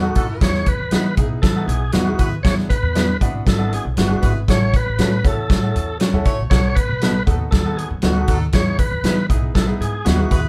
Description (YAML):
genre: uptempo 1960s-style soul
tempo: 118 BPM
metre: 4/4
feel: straight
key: E major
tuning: A4 = 441 Hz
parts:
  - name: tonewheel organ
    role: melody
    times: 0.0-10.4 s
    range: F#4 to C#5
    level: -27 LUFS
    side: equal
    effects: overdrive, fast rotary speaker
  - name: bright upright piano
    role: accompaniment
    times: 0.0-10.4 s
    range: B3 to B4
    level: -31 LUFS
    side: equal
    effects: none
  - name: electric guitar through a small old amp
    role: stabs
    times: 0.0-10.2 s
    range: B3 to A4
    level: -30 LUFS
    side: equal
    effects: phaser
  - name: upright bass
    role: bass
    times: 0.0-10.5 s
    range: G1 to E3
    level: -25 LUFS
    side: equal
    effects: none
  - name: warm horn section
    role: second line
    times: 0.2-10.5 s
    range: E3 to C#5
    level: -33 LUFS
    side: equal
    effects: none
  - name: natural country drum kit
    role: drums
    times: 0.2-10.4 s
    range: hi-hat, kick drum, snare drum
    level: -20 LUFS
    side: equal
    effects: none
room: light reverb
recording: band playing live in one room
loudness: -18 LUFS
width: mono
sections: 0.0-10.5 A section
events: none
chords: 0.4 Emaj7; 2.5 E7; 4.5 A6; 6.5 B7; 8.5 Emaj7